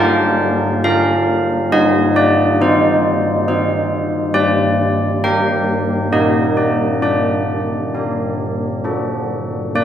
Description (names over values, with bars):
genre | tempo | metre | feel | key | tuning
classical, tune for church bells | 68 BPM | 3/4 | straight | G minor | A4 = 437 Hz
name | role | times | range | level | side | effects
old church bells | solo | 0.0-9.8 s | G3 to G5 | -14 LUFS | equal | none
room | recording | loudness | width
wet scoring stage reverb, RT60 1.8 s | minimal, uncompressed stereo recording | -14 LUFS | side -9 dB against mid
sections
0.0-9.8 A section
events
none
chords
0.0 Gm; 1.7 Cm/G; 4.3 Gm; 6.1 Gm/Bb; 7.0 Gm/D; 8.8 D